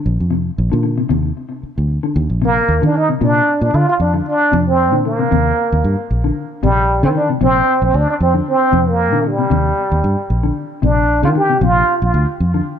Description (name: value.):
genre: afrobeat.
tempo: 114 BPM.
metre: 4/4.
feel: swing 54% on 16ths.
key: Bb major.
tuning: A4 = 440 Hz.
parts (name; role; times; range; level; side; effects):
mellow electric guitar; arpeggios; 0.0-12.7 s; C3 to D3; -21 LUFS; left 6 dB; spring reverb, tape echo.
fingered electric bass; bass; 0.1-12.6 s; Bb1 to Eb3; -16 LUFS; equal; none.
trombone with plunger mute; melody; 2.4-12.3 s; G3 to G4; -16 LUFS; right 1 dB; tape echo.
room: light reverb.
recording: none.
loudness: -13 LUFS.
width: side -8 dB against mid.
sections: 0.0-3.2 A section; 3.2-12.8 B section.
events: none.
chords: 0.0 Bbadd9; 1.1 Eb5; 3.2 Bbadd9; 5.3 Ebmaj7(no3); 7.4 Bbadd9; 9.5 Ebmaj7; 11.6 Bbadd9.